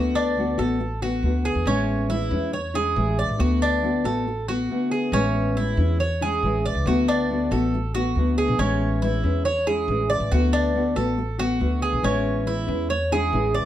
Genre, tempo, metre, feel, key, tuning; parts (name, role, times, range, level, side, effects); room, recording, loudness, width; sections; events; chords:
latin; 139 BPM; 4/4; straight; A major; A4 = 441 Hz
nylon-string guitar; accompaniment; 0.0-13.7 s; D3 to F#4; -24 LUFS; left 2 dB
Cuban tres; arpeggios; 0.0-13.7 s; C#4 to D5; -25 LUFS; right 2 dB
upright bass; bass; 0.0-13.6 s; A1 to E2; -25 LUFS; equal
moderate studio reverb, RT60 0.6 s; dark, warm production; -20 LUFS; side -12 dB against mid
0.0-5.1 A section; 5.1-13.7 A section
0.0 D6; 1.7 Amaj7; 3.4 D6; 5.1 Amaj7; 6.9 D6; 8.6 Amaj7; 10.3 D6; 12.0 Amaj7